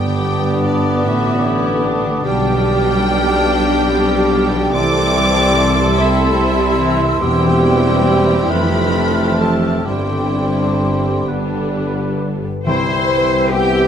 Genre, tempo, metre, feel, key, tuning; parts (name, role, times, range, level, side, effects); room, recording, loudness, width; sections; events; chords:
classical, slow romantic movement for symphony orchestra; 42-50 BPM (dotted quarters); 6/8; rubato; C major; A4 = 439 Hz
warm symphonic violin section; melody; 0.0-13.9 s; D5 to D6; -23 LUFS; right 1 dB
mellow clarinet; second line; 0.0-13.9 s; B3 to D5; -23 LUFS; left 1 dB
mellow cor anglais; second line; 0.0-13.9 s; B4 to G5; -26 LUFS; right 3 dB
rich symphonic violin section; second line; 0.0-13.9 s; B3 to C6; -26 LUFS; left 1 dB
small flute group; second line; 0.0-13.9 s; G5 to F6; -26 LUFS; left 3 dB
warm bassoon; accompaniment; 0.0-13.9 s; E3 to B3; -24 LUFS; right 2 dB
warm symphonic viola section; accompaniment; 0.0-13.9 s; D3 to C5; -22 LUFS; right 1 dB
mellow French horn section; sustained chords; 0.0-13.9 s; G3 to D4; -21 LUFS; left 1 dB
concert harp; arpeggios; 0.0-13.9 s; E2 to D6; -25 LUFS; left 5 dB
mellow tuba; bass; 0.0-13.9 s; E1 to C2; -24 LUFS; right 3 dB
rich studio double bass section; bass; 0.0-13.9 s; E1 to C2; -23 LUFS; right 1 dB
warm symphonic cello section; bass; 0.0-13.9 s; E2 to C5; -23 LUFS; equal
mellow trumpet; stabs; 12.7-13.9 s; E5; -28 LUFS; right 7 dB
timpani; percussion; 12.7-13.9 s; C3; -25 LUFS; left 1 dB
moderate stone room reverb, RT60 1.1 s; -13 LUFS; side -8 dB against mid
0.0-12.7 A section; 12.7-13.9 B section
0.0 G; 2.2 G7/B; 4.7 C; 7.2 C/E; 8.5 F; 9.9 Gsus4; 11.3 G; 12.7 C